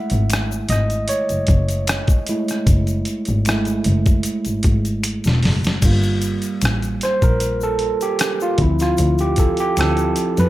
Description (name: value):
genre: R&B, neo-soul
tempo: 76 BPM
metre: 4/4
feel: swing 53% on 16ths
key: unclear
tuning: A4 = 440 Hz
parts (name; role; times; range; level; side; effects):
- overdriven tine electric piano; accompaniment; 0.0-10.5 s; F3 to F#5; -20 LUFS; right 1 dB; lush chorus
- warm double bass; bass; 0.1-10.5 s; E1 to F2; -19 LUFS; equal; none
- boom bap sampler-style drum kit; drums; 0.1-10.5 s; crash cymbal, hi-hat, kick drum, rim click, snare drum; -20 LUFS; equal; none
- egg shaker and finger snaps; percussion; 0.1-10.5 s; none; -33 LUFS; left 8 dB; none
room: small room ambience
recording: none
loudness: -16 LUFS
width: side -15 dB against mid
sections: 0.0-5.8 A section; 5.8-10.5 B section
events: tine electric piano solo 0.0-5.8, 5.8-10.5; drum fill 5.0-5.8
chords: 0.0 F#m9; 5.8 Gm9; 8.6 Dm9